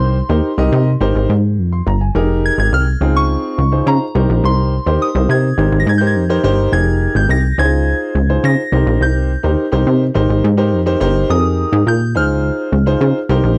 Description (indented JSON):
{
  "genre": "early-eighties boogie funk",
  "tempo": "105 BPM",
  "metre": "4/4",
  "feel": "straight",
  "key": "unclear",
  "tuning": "A4 = 441 Hz",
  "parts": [
    { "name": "soft synth bell", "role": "melody", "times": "0.0-13.6 s", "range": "Bb5 to Bb6", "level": "-24 LUFS", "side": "equal", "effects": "chorus" },
    { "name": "warm concert grand piano", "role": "accompaniment", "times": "0.0-13.6 s", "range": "C4 to C6", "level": "-21 LUFS", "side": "equal", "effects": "none" },
    { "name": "plucky analog bass", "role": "bass", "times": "0.0-13.6 s", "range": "F1 to Db3", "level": "-16 LUFS", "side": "equal", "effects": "none" }
  ],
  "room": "small room ambience",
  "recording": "dry, close 1970s-style studio recording",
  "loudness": "-15 LUFS",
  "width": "mono",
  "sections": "0.0-13.6 A section",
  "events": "none",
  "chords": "0.0 Cm7; 1.0 Abmaj9; 2.2 Fm11; 3.0 Dbmaj7; 4.2 Cm7; 5.6 Abmaj9; 6.7 Fm11; 7.6 Dbmaj7; 8.7 Cm7; 10.2 Abmaj9; 11.3 Fm11; 12.2 Dbmaj7"
}